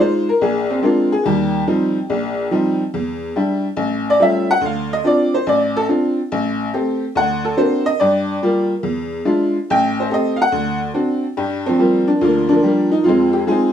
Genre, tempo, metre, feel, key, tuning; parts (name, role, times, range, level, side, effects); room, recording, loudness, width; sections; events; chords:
solo jazz; 142 BPM; 4/4; swing 68% on 8ths; G minor; A4 = 440 Hz
tack piano; solo; 0.0-13.7 s; A1 to G5; -15 LUFS; equal
wet studio reverb, RT60 0.8 s; band playing live in one room; -15 LUFS; side -9 dB against mid
0.0-11.4 A section; 11.4-13.7 B section
honky-tonk piano solo 0.0-11.4
0.4 Bb9; 1.2 Eb69; 2.9 Em7; 3.8 A7b13; 4.6 Dm7; 6.3 Am7; 7.1 D7b13; 8.0 Gm7; 8.8 E7b9; 9.7 Am7b5; 10.5 D7; 11.4 Gm7; 13.0 Fm7